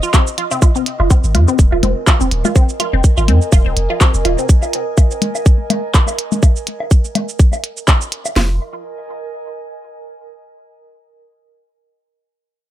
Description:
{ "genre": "minimal techno", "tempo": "124 BPM", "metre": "4/4", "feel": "swing 56% on 16ths", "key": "F minor", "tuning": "A4 = 440 Hz", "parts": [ { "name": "resonant blip pluck", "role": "riff", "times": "0.0-4.5, 8.4-8.6 s", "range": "C4 to F4", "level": "-21 LUFS", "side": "equal", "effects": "phaser, sidechain pumping, digital delay" }, { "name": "minimal click drum kit", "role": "drums", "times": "0.0-8.3 s", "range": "cabasa, handclaps, hi-hat", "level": "-20 LUFS", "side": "right 1 dB", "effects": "none" }, { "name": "bubbling stepped-filter texture", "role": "texture", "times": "0.0-0.6 s", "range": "Eb5", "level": "-31 LUFS", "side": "right 2 dB", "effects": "chorus, built-in reverb, sidechain pumping" }, { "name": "garage drum kit", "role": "drums", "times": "0.1-8.5 s", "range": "hi-hat, kick drum, snare drum", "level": "-10 LUFS", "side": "equal", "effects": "none" }, { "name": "woodblock and congas", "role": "percussion", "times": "0.1-8.3 s", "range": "none", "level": "-21 LUFS", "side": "left 3 dB", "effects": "overdrive, digital delay" }, { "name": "warbly tape-like pad", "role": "texture", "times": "1.3-10.3 s", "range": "Bb4 to Ab5", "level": "-26 LUFS", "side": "right 3 dB", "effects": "chorus, built-in reverb, sidechain pumping" }, { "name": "punchy sub bass", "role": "bass", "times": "1.0-4.4, 8.4-8.6 s", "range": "Eb1 to F2", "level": "-15 LUFS", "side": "equal", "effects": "sidechain pumping" } ], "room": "little or no reverb", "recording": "none", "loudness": "-12 LUFS", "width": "side -13 dB against mid", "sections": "0.6-8.4 A section; 8.4-10.3 B section", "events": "fade-out on ambient pad 0.6-8.4", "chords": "0.0 F5; 0.6 Fm" }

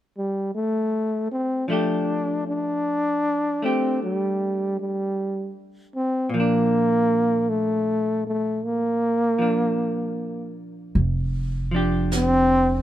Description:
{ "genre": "jazz ballad", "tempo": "52 BPM", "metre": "4/4", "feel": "swing 67% on 8ths", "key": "F major", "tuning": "A4 = 440 Hz", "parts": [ { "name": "clear trombone", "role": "melody", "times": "0.2-12.8 s", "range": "G3 to D4", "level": "-22 LUFS", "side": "equal", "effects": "none" }, { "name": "vintage hollow-body jazz guitar", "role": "accompaniment", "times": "1.7-12.8 s", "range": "Bb2 to G4", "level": "-27 LUFS", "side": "equal", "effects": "none" }, { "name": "jazz brush drum kit", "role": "drums", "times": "10.9-12.8 s", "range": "brushed snare drum, hi-hat, snare drum", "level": "-32 LUFS", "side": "right 1 dB", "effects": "none" }, { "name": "upright bass", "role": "bass", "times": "11.0-12.8 s", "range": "F1", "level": "-23 LUFS", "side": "right 1 dB", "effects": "none" } ], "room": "little or no reverb", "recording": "minimal, uncompressed stereo recording", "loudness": "-21 LUFS", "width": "side -12 dB against mid", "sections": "0.0-1.7 A section; 1.7-10.9 B section; 10.9-12.8 C section", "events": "none", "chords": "0.0 N.C.; 1.7 F69; 6.3 Bb; 10.9 Fsus2" }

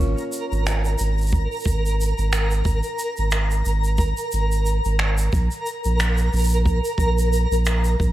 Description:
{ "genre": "folktronica", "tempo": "90 BPM", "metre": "4/4", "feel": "swing 56% on 16ths", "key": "unclear", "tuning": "A4 = 440 Hz", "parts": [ { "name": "Celtic harp", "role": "arpeggios", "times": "0.0-2.6 s", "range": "Db4 to Bb4", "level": "-32 LUFS", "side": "equal", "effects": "digital delay" }, { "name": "warm sub bass", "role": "bass", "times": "0.0-8.1 s", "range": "Ab1 to Bb1", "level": "-20 LUFS", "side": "right 1 dB", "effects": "none" }, { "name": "shaker and finger snaps", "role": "drums", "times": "0.0-8.1 s", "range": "none", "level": "-28 LUFS", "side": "right 1 dB", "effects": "none" }, { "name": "twinkling granular texture", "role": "texture", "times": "0.2-8.1 s", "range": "Bb4 to Bb5", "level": "-27 LUFS", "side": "equal", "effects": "built-in reverb" }, { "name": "kick drum", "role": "drums", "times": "1.3-8.1 s", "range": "none", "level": "-22 LUFS", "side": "right 1 dB", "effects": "none" } ], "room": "light reverb", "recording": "none", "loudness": "-19 LUFS", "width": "side -14 dB against mid", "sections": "0.0-8.1 A section", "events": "none", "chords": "0.0 Absus2; 5.3 N.C." }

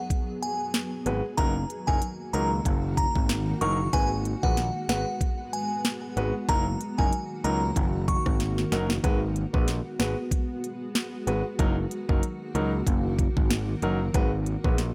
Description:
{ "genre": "dancehall", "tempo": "94 BPM", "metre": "4/4", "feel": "swing 56% on 16ths", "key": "G# minor", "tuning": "A4 = 440 Hz", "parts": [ { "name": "granular cloud pad", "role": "sustained chords", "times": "0.0-14.9 s", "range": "D#3 to G#4", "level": "-37 LUFS", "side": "equal", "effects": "built-in reverb, sidechain pumping" }, { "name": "island pop drum kit", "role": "drums", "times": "0.1-14.9 s", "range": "hi-hat, kick drum, rim click, snare drum", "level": "-29 LUFS", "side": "equal", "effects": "overdrive" }, { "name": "glassy synth bell", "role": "melody", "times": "0.4-8.2 s", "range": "F#5 to C#6", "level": "-33 LUFS", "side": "equal", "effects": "chorus, delay" }, { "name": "clear baby grand piano", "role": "accompaniment", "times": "1.1-14.8 s", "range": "F#3 to B4", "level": "-34 LUFS", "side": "equal", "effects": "sidechain pumping" }, { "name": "overdriven picked electric bass", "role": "bass", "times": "1.1-14.9 s", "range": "F#1 to C#2", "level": "-31 LUFS", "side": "equal", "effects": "none" } ], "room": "digital ambience", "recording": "none", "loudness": "-27 LUFS", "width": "mono", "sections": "0.0-14.9 A section", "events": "drum fill 8.4-9.0", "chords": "0.0 G#m7; 1.4 F#6; 3.9 G#m7; 6.5 F#6; 9.0 G#m7; 11.6 F#6; 14.1 G#m7" }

